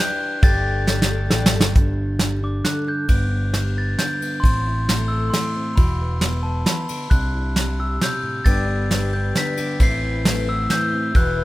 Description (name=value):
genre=indie folk with a building arrangement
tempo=134 BPM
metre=3/4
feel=straight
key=G major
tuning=A4 = 440 Hz
part: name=glockenspiel with rubber mallets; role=melody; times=0.0-11.4 s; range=A5 to C7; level=-26 LUFS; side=equal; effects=none
part: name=picked twelve-string acoustic guitar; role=accompaniment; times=0.0-1.8, 8.4-11.4 s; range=E2 to G4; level=-28 LUFS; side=left 5 dB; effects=none
part: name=picked electric bass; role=bass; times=0.4-11.4 s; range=E1 to C2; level=-23 LUFS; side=equal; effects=none
part: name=soft brush drum kit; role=drums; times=0.4-11.3 s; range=hi-hat, kick drum, ride cymbal, snare drum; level=-19 LUFS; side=equal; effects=none
part: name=fingerpicked plugged-in steel-string acoustic guitar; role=accompaniment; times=1.8-11.4 s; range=G2 to B4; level=-27 LUFS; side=equal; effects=none
room=studio reverb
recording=rough home demo mix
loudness=-18 LUFS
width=side -17 dB against mid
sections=0.0-1.8 A section; 1.8-3.1 B section; 3.1-11.4 C section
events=drum fill 0.9-1.8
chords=0.4 Gsus2; 3.1 G; 4.4 Am; 5.8 Esus2; 7.1 Cadd9; 8.5 G; 9.8 Amadd9